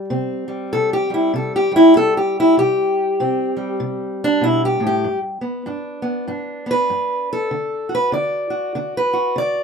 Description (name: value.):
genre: acoustic country blues, solo or duo.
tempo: 97 BPM.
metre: 4/4.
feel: swing 60% on 8ths.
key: unclear.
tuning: A4 = 439 Hz.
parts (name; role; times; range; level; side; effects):
fingerpicked steel-string acoustic guitar; solo; 0.0-9.6 s; G2 to D5; -16 LUFS; equal; none.
room: moderate small room reverb, RT60 0.6 s.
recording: minimal, uncompressed stereo recording.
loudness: -16 LUFS.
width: side -6 dB against mid.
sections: 0.0-9.6 A section.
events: steel-string acoustic guitar solo 0.0-9.6.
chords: 0.0 C; 5.0 G; 7.5 D.